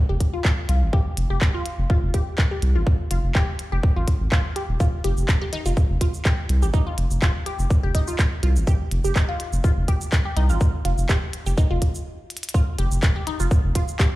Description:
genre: minimal techno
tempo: 124 BPM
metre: 4/4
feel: swing 53% on 16ths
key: F minor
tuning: A4 = 440 Hz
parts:
  - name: resonant blip pluck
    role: riff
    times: 0.1-14.1 s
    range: Eb4 to G4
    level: -30 LUFS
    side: equal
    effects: phaser, sidechain pumping, tape echo
  - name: saturated sub bass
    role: bass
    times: 0.1-13.7 s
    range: Eb1 to C2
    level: -21 LUFS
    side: equal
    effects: sidechain pumping
  - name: electronic kick drum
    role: drums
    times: 0.2-14.1 s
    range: none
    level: -19 LUFS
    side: equal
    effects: none
  - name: minimal click drum kit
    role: drums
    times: 0.2-14.1 s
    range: handclaps, hi-hat, shaker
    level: -29 LUFS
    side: equal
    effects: none
room: little or no reverb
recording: played on a big sound system in a bare room, large studio reverb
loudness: -19 LUFS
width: side -17 dB against mid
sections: 0.0-12.5 A section; 12.5-14.2 B section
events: stop 12.1-12.5; drum fill 12.3; drop 12.5-14.2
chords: 0.0 F5

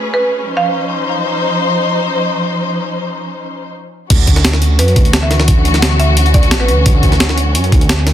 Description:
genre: liquid drum and bass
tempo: 174 BPM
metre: 4/4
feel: straight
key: unclear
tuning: A4 = 440 Hz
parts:
  - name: warm studio string section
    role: sustained chords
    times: 0.0-8.1 s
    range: E3 to B#4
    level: -17 LUFS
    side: left 2 dB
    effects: sidechain pumping
  - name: buzzing marimba with hard mallets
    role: melody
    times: 0.1-0.8, 4.8-6.7 s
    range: B4 to E#5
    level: -20 LUFS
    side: right 2 dB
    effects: vintage 12-bit sampler grit, ping-pong delay
  - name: dark detuned saw bass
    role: bass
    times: 4.1-8.1 s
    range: A1 to F#2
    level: -13 LUFS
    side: equal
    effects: none
  - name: breakbeat sampler-style drum kit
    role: drums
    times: 4.1-8.1 s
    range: crash cymbal, hi-hat, snare drum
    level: -16 LUFS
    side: equal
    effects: none
  - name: electronic kick drum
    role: drums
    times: 4.1-7.8 s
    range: none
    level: -11 LUFS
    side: equal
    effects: none
room: light reverb, digital ambience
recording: dense, heavily limited modern master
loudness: -10 LUFS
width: side -11 dB against mid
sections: 0.0-4.1 A section; 4.1-8.1 B section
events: drop 4.1-8.1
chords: 0.5 C#maj9; 4.1 Dmaj9

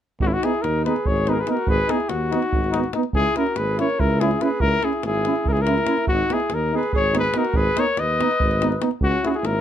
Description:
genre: balkan folk, Balkan brass band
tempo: 287 BPM (eighths)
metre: 7/8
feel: straight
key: G# minor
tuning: A4 = 442 Hz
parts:
  - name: mellow trumpet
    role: melody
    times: 0.2-9.6 s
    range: E4 to D#5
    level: -23 LUFS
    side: left 4 dB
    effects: none
  - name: mellow alto saxophone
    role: second line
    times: 0.2-9.6 s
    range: C#4 to B4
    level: -27 LUFS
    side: right 6 dB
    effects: none
  - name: mellow tuba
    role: bass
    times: 0.2-9.6 s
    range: G#1 to D#2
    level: -24 LUFS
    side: equal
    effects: none
  - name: davul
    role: percussion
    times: 0.2-9.6 s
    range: none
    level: -27 LUFS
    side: right 1 dB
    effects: none
  - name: brilliant trombone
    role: accompaniment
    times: 0.4-9.3 s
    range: D#4 to E4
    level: -28 LUFS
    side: left 6 dB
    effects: none
  - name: dark euphonium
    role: accompaniment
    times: 0.4-9.3 s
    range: B3 to C#4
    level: -26 LUFS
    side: right 8 dB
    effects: none
room: light reverb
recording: none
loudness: -18 LUFS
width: side -10 dB against mid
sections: 0.2-9.6 A section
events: none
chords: 0.2 G#m; 3.1 C#m; 6.1 G#m; 9.0 C#m

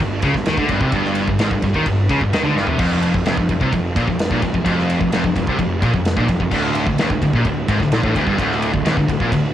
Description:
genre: heavy metal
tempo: 129 BPM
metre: 4/4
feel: straight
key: unclear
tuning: A4 = 439 Hz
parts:
  - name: fuzz guitar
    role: riff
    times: 0.0-9.5 s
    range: D2 to Eb3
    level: -22 LUFS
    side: equal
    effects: distortion, cassette tape
  - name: heavy high-gain guitar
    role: riff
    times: 0.0-9.5 s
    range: D2 to Eb3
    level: -23 LUFS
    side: right 6 dB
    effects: distortion, cassette tape
  - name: high-gain distorted guitar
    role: riff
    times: 0.0-9.5 s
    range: D2 to Eb3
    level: -22 LUFS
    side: left 6 dB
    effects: distortion, cassette tape
  - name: fuzz picked electric bass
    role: bass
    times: 0.0-9.5 s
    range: D1 to Eb2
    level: -25 LUFS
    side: equal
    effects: overdrive
  - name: big rock drum kit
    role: drums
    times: 0.2-9.4 s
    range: crash cymbal, kick drum, ride cymbal, snare drum, toms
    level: -21 LUFS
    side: equal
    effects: cassette tape
room: light reverb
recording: home recording on cassette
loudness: -16 LUFS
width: side -11 dB against mid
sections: 0.0-9.5 A section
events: drum fill 2.6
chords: 0.0 G5; 2.8 F5; 6.5 D5

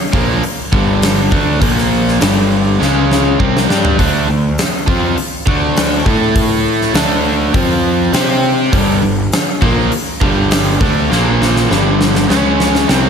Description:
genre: classic rock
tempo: 101 BPM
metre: 4/4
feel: straight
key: unclear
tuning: A4 = 441 Hz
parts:
  - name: overdriven electric guitar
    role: riff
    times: 0.1-13.1 s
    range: G2 to C5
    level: -17 LUFS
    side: right 11 dB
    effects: slapback echo
  - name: raw garage guitar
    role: riff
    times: 0.1-13.1 s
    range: G2 to C5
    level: -17 LUFS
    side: left 8 dB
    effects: overdrive, slapback echo
  - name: fuzz picked electric bass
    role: bass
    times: 0.1-13.1 s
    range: G1 to C3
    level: -18 LUFS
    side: equal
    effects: overdrive
  - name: huge arena drum kit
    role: drums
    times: 0.1-13.0 s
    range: hi-hat, kick drum, snare drum, toms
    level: -16 LUFS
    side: equal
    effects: none
room: moderate scoring stage reverb, RT60 2.0 s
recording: big arena sound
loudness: -11 LUFS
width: side -7 dB against mid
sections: 0.0-13.1 A section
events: drum fill 2.8-4.0, 11.1-13.1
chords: 0.0 G5; 1.6 Bb5; 2.2 G5; 2.8 C#5; 3.4 G5; 4.0 D5; 6.1 A5; 6.9 D5; 7.5 F5; 8.1 C5; 8.7 G5; 11.1 Bb5; 11.7 G5; 12.3 C#5

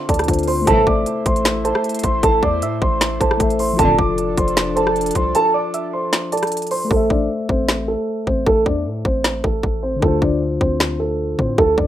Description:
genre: hip hop, trap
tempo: 154 BPM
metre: 4/4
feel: half-time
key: A minor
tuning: A4 = 440 Hz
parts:
  - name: dark grand piano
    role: melody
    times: 0.0-11.9 s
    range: A3 to D6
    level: -19 LUFS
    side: right 2 dB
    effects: low-pass filter, plate reverb
  - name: soft round pluck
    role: second line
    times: 0.0-6.9 s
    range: A4 to E5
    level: -27 LUFS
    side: right 4 dB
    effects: chorus, digital delay, plate reverb
  - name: mellow tine electric piano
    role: accompaniment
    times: 0.0-11.9 s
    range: D3 to E5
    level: -23 LUFS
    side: left 4 dB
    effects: low-pass filter, plate reverb
  - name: airy breathy pad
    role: sustained chords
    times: 0.0-6.9 s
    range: D3 to C5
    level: -29 LUFS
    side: left 1 dB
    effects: chorus, plate reverb
  - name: long sustained 808-style bass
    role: bass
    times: 0.1-11.9 s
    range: F1 to A2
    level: -25 LUFS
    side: equal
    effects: none
  - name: trap drum kit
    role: drums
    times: 0.1-11.9 s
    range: finger snaps, hi-hat, kick drum, rim click, snare drum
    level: -20 LUFS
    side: equal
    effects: overdrive
  - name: dark symphonic string section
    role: stabs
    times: 0.7-1.0, 3.8-4.1 s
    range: A1 to E3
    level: -25 LUFS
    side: right 1 dB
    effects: none
room: moderate studio reverb, RT60 0.5 s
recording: rough home demo mix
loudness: -16 LUFS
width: side -12 dB against mid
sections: 0.0-6.9 A section; 6.9-11.9 B section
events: break 5.3-6.9; hi-hats muted 6.9-11.9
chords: 0.0 Dm7; 0.7 Am; 3.8 F6; 6.9 Am; 10.0 Dm7

